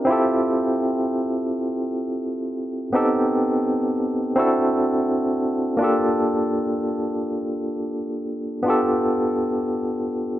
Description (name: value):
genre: R&B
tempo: 42 BPM (dotted quarters)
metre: 6/8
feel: straight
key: unclear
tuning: A4 = 440 Hz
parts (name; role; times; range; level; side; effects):
- barky tine electric piano; solo; 0.0-10.4 s; Bb3 to A4; -20 LUFS; equal; overdrive, fast tremolo
room: moderate plate reverb, RT60 3.0 s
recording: nothing above 7.9 kHz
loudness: -20 LUFS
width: side -13 dB against mid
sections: 0.0-10.4 A section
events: none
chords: 0.1 Fmaj9; 2.9 Am7b5; 4.4 D7; 5.8 Gm9; 8.6 G9